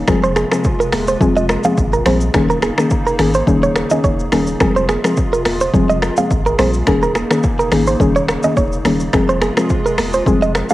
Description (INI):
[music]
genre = afrobeats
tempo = 106 BPM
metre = 4/4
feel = swing 55% on 16ths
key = F minor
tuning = A4 = 444 Hz
[part]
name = hollow soft pad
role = sustained chords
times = 0.0-10.7 s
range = C3 to Ab4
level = -24 LUFS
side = equal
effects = chorus, cassette tape
[part]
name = warm sub bass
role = bass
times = 0.0-10.6 s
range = Eb1 to Bb1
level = -23 LUFS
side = equal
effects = none
[part]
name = soft round pluck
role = accompaniment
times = 0.1-10.7 s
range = Eb3 to Ab4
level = -18 LUFS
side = left 2 dB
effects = chorus, cassette tape
[part]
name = deep house drum kit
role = drums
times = 0.1-10.7 s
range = finger snaps, hi-hat, kick drum, rim click, shaker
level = -18 LUFS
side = equal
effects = overdrive, cassette tape
[part]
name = congas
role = percussion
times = 0.1-10.7 s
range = none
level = -26 LUFS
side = right 3 dB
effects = none
[part]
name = direct-recorded clean electric guitar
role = riff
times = 0.2-10.7 s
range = Ab4 to F5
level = -19 LUFS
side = right 3 dB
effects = cassette tape, analog delay
[sound]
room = light reverb, digital ambience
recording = home recording on cassette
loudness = -13 LUFS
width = side -16 dB against mid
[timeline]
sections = 0.0-10.7 A section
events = none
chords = 0.1 Fm; 2.3 Eb7sus4; 4.6 Fm; 6.9 Eb7sus4; 9.1 Fm